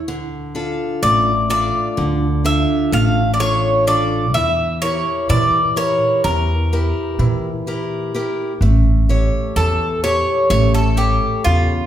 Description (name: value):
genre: greek folk, Greek bouzouki band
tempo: 127 BPM (eighths)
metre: 9/8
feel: straight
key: D harmonic minor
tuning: A4 = 440 Hz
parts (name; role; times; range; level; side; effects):
- upright bass; bass; 0.0-11.9 s; A1 to Bb2; -19 LUFS; equal; none
- picked acoustic archtop guitar; accompaniment; 0.1-11.9 s; C#3 to C#5; -22 LUFS; left 1 dB; none
- Greek bouzouki; melody; 1.0-11.9 s; F4 to F5; -18 LUFS; equal; none
room: wet large studio reverb, RT60 1.2 s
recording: band playing live in one room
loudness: -15 LUFS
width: side -11 dB against mid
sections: 0.0-11.9 A section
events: none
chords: 0.1 Dm; 4.3 Edim; 8.6 A7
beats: | 0.08 0.55 1.03 1.50 1.98 2.45 2.92 3.40 3.87 | 4.35 4.82 5.29 5.77 6.24 6.72 7.19 7.67 8.14 | 8.61 9.09 9.56 10.03 10.51 10.98 11.46